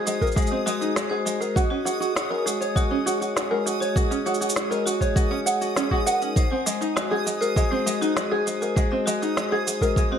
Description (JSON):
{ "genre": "folktronica", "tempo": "100 BPM", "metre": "4/4", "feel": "straight", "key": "unclear", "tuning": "A4 = 441 Hz", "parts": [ { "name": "vibraphone with hard mallets", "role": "second line", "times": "0.0-10.2 s", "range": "Ab3 to Ab5", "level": "-27 LUFS", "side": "left 2 dB", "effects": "vintage 12-bit sampler grit, ping-pong delay" }, { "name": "open-back banjo", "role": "arpeggios", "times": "0.0-10.2 s", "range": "Ab3 to Gb5", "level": "-25 LUFS", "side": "right 1 dB", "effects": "ping-pong delay" }, { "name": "backwards swelling texture", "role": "texture", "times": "0.0-10.2 s", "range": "Eb6", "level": "-35 LUFS", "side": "right 1 dB", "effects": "built-in reverb" }, { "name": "electronic cabasa and snare drum", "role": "drums", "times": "0.1-10.1 s", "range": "none", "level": "-29 LUFS", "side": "right 1 dB", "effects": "none" }, { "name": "electronic kick drum", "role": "drums", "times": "0.2-10.1 s", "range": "none", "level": "-22 LUFS", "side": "equal", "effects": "none" } ], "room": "light reverb, digital ambience", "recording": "none", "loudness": "-21 LUFS", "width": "side -8 dB against mid", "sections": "0.0-10.2 A section", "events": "none", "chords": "0.0 Abadd9; 1.6 Gb5; 6.4 Ab" }